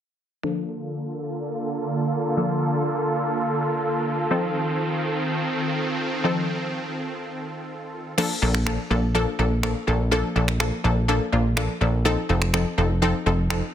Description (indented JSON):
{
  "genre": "dance-pop",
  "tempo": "124 BPM",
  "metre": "4/4",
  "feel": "straight",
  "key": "unclear",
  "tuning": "A4 = 439 Hz",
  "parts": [
    { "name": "wide unison pluck", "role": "accompaniment", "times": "0.4-13.6 s", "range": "F3 to A4", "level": "-24 LUFS", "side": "left 2 dB", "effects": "low-pass filter" },
    { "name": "supersaw chords", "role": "sustained chords", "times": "0.4-8.1 s", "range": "D3 to A4", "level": "-24 LUFS", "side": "right 1 dB", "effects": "low-pass filter" },
    { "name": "punchy analog drum machine", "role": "drums", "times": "8.2-13.6 s", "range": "crash cymbal, finger snaps", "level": "-28 LUFS", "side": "equal", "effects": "soft clipping on snare" },
    { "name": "plucky analog bass", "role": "bass", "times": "8.4-13.6 s", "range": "F1 to Bb1", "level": "-22 LUFS", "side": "equal", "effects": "none" }
  ],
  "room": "light reverb",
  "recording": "dense, heavily limited modern master",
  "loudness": "-21 LUFS",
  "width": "side -10 dB against mid",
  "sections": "0.4-8.2 A section; 8.2-13.7 B section",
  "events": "filter sweep 0.4-8.2",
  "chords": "0.4 Bbmaj7; 4.3 F7; 8.2 Bbmaj7; 12.1 F7"
}